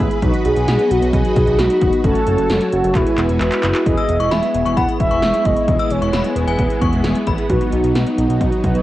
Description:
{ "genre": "synth-pop", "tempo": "132 BPM", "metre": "4/4", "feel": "straight", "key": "E major", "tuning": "A4 = 440 Hz", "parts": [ { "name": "mellow synth brass", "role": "accompaniment", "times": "0.0-8.8 s", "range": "F#3 to G#4", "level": "-21 LUFS", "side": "equal", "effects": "chorus, phaser, cassette tape" }, { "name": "string machine, violas", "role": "sustained chords", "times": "0.0-8.8 s", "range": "F#3 to B5", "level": "-24 LUFS", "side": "equal", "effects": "ensemble chorus, cassette tape" }, { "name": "fat analog bass", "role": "bass", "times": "0.0-8.8 s", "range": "E1 to B1", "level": "-20 LUFS", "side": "equal", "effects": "none" }, { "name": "80s electronic pad drums", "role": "drums", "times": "0.0-8.8 s", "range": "handclaps, hi-hat, kick drum, snare drum", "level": "-20 LUFS", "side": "equal", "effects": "none" }, { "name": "mellow horn-like synth lead", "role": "melody", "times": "0.2-7.0 s", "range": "D#4 to F#5", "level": "-19 LUFS", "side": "equal", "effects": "chorus, phaser" }, { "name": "synth chime", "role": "second line", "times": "4.0-7.3 s", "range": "G#5 to E6", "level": "-26 LUFS", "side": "left 5 dB", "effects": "ensemble chorus, phaser, tremolo, cassette tape, analog delay" } ], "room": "light reverb", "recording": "home recording on cassette", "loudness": "-14 LUFS", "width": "side -15 dB against mid", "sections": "0.0-3.9 A section; 3.9-8.8 B section", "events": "drum fill 3.0-3.9", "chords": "0.2 B; 2.0 F#m; 3.0 Eadd9; 3.9 E; 7.5 B" }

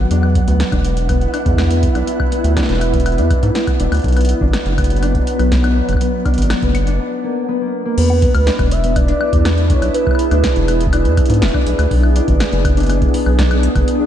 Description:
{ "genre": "IDM", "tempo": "122 BPM", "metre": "4/4", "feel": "straight", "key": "unclear", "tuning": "A4 = 441 Hz", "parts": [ { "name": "glassy FM pad", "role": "sustained chords", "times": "0.0-14.1 s", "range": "F#3 to G#4", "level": "-22 LUFS", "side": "equal", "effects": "ensemble chorus, built-in reverb, sidechain pumping" }, { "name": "concert harp", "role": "arpeggios", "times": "0.0-14.1 s", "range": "F#3 to B4", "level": "-21 LUFS", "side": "left 2 dB", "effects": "ping-pong delay" }, { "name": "round analog bass", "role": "bass", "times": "0.0-13.8 s", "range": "E1 to G#2", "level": "-15 LUFS", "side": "equal", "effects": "tube saturation" }, { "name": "flickering grainy texture", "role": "texture", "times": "0.0-7.0 s", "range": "F#5", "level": "-32 LUFS", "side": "right 4 dB", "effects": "built-in reverb, lush chorus" }, { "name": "electro analog drum machine", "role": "drums", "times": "0.1-14.0 s", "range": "crash cymbal, hi-hat, snare drum, woodblock", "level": "-24 LUFS", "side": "left 1 dB", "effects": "ping-pong delay" }, { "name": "electronic kick drum", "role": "drums", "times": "0.4-13.9 s", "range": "none", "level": "-18 LUFS", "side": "equal", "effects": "none" }, { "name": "warm velvety synth lead", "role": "melody", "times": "8.0-10.6 s", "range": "B4 to E5", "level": "-21 LUFS", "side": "right 2 dB", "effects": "chorus, analog delay" } ], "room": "light reverb, digital ambience", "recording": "none", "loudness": "-13 LUFS", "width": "side -10 dB against mid", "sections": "0.0-8.0 A section; 8.0-14.1 B section", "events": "break 7.0-8.0", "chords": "0.1 E7sus2; 4.0 Bm; 8.0 E7; 11.9 Bm6" }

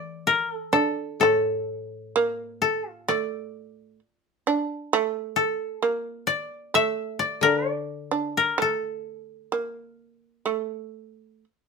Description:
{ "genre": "japanese traditional, Japanese chamber music", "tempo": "65 BPM", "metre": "4/4", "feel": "rubato", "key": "unclear", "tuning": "A4 = 440 Hz", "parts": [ { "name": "koto", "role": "melody", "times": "0.0-11.4 s", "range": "A4 to E5", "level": "-24 LUFS", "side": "left 4 dB", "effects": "none" }, { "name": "shamisen", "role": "second line", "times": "0.0-11.4 s", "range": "A3 to D4", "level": "-25 LUFS", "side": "right 6 dB", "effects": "none" }, { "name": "koto", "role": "accompaniment", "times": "0.0-10.2 s", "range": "A2 to E3", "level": "-27 LUFS", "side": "left 4 dB", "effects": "none" } ], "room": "moderate studio reverb, RT60 0.5 s", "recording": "minimal, uncompressed stereo recording", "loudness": "-23 LUFS", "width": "side -4 dB against mid", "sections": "0.0-11.7 A section", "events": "none", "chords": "none" }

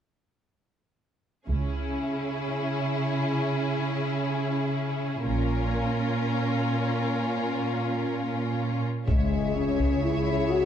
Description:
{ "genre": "cinematic, epic orchestral film score", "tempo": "free time", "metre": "none", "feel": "none", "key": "unclear", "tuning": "A4 = 441 Hz", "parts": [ { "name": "rich symphonic violin section", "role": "melody", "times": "1.5-10.7 s", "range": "G#4 to E5", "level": "-36 LUFS", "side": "left 2 dB", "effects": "none" }, { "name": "rich symphonic violin section", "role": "second line", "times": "1.5-10.7 s", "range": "E4 to C#5", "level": "-34 LUFS", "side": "left 2 dB", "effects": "none" }, { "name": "rich symphonic viola section", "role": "accompaniment", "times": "1.5-10.7 s", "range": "C#4 to G#4", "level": "-32 LUFS", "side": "left 1 dB", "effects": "none" }, { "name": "dark symphonic cello section", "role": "bass", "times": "1.5-10.7 s", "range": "A#2 to C#3", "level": "-29 LUFS", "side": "right 2 dB", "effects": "none" }, { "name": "rich symphonic double bass section", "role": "bass", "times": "1.5-1.9, 5.3-5.7, 9.1-10.7 s", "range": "A#1 to C#2", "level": "-30 LUFS", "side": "right 3 dB", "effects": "none" }, { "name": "mellow French horn section", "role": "sustained chords", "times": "9.1-10.7 s", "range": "G#3 to F#4", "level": "-26 LUFS", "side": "left 5 dB", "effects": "none" }, { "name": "taiko ensemble", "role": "drums", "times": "9.1-10.0 s", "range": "none", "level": "-27 LUFS", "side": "equal", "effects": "none" }, { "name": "impact", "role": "sound effects", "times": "9.1-10.7 s", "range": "none", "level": "-36 LUFS", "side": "equal", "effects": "none" } ], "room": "moderate scoring stage reverb, RT60 1.9 s", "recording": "dark, warm production", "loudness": "-25 LUFS", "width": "side -9 dB against mid", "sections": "1.5-9.1 A section; 9.1-10.7 B section", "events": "impact 9.1-10.7", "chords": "1.5 C#m; 5.3 A#m; 9.1 C#m" }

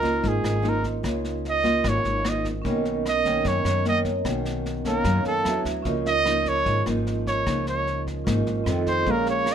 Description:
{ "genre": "bossa nova", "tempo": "150 BPM", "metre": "4/4", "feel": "straight", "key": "Db mixolydian", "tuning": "A4 = 440 Hz", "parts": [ { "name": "warm trumpet", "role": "melody", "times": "0.0-9.5 s", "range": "Ab4 to Eb5", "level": "-24 LUFS", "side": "right 2 dB", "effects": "none" }, { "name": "nylon-string guitar", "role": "accompaniment", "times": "0.0-9.5 s", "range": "Gb2 to F4", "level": "-28 LUFS", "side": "left 3 dB", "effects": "none" }, { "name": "vibraphone with medium mallets", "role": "accompaniment", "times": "0.0-9.5 s", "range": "Cb4 to F5", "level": "-29 LUFS", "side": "right 9 dB", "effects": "none" }, { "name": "upright bass", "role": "bass", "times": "0.0-9.5 s", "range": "Ab1 to Gb2", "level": "-29 LUFS", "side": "equal", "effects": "none" }, { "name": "vintage brush drum kit", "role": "drums", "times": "0.0-9.5 s", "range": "kick drum, rim click, snare drum", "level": "-33 LUFS", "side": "equal", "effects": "none" } ], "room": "light reverb", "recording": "minimal, uncompressed stereo recording", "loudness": "-21 LUFS", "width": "side -8 dB against mid", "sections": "0.0-9.5 A section", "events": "trumpet solo 0.0-9.5", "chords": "0.0 Db69; 2.7 Cbmaj9; 5.5 D69; 5.9 Db69; 8.7 F7" }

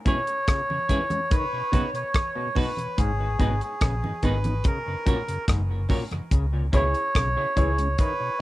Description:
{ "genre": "dub reggae", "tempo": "72 BPM", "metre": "4/4", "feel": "straight", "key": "C# dorian", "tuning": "A4 = 440 Hz", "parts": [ { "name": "melodica", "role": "melody", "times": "0.1-8.4 s", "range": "G#4 to C#5", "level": "-27 LUFS", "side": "right 1 dB", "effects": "cassette tape, dub echo" }, { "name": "clean electric guitar", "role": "accompaniment", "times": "0.1-6.9 s", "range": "B3 to C#5", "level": "-34 LUFS", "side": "right 3 dB", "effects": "tremolo, cassette tape, dub echo" }, { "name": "mellow tonewheel organ", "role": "accompaniment", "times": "0.1-8.3 s", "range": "F#2 to D#4", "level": "-34 LUFS", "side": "left 1 dB", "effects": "chorus vibrato, slow rotary speaker, cassette tape" }, { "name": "overdriven clav", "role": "arpeggios", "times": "0.1-8.1 s", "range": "G#2 to E3", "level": "-35 LUFS", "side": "left 3 dB", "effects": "cassette tape, dub echo" }, { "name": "damped 70s drum kit", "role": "drums", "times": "0.1-8.2 s", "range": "hi-hat, kick drum, rim click", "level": "-23 LUFS", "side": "equal", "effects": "cassette tape" }, { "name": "congas", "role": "percussion", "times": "0.1-6.3 s", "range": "none", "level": "-36 LUFS", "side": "right 2 dB", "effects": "none" }, { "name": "vintage muted fingered electric bass", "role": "bass", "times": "3.0-7.9 s", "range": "F#1 to C#2", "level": "-25 LUFS", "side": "equal", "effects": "tube saturation" }, { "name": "clear grand piano", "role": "stabs", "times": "6.7-7.8 s", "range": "E4 to C#5", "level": "-31 LUFS", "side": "left 1 dB", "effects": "cassette tape, dub echo, plate reverb" } ], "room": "light reverb", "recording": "home recording on cassette", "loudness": "-22 LUFS", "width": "side -17 dB against mid", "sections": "0.0-8.4 A section", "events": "break 0.0-6.3; part muted 6.3-8.4", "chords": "0.0 C#m; 1.3 B; 3.0 G#m; 4.6 F#; 6.3 C#m" }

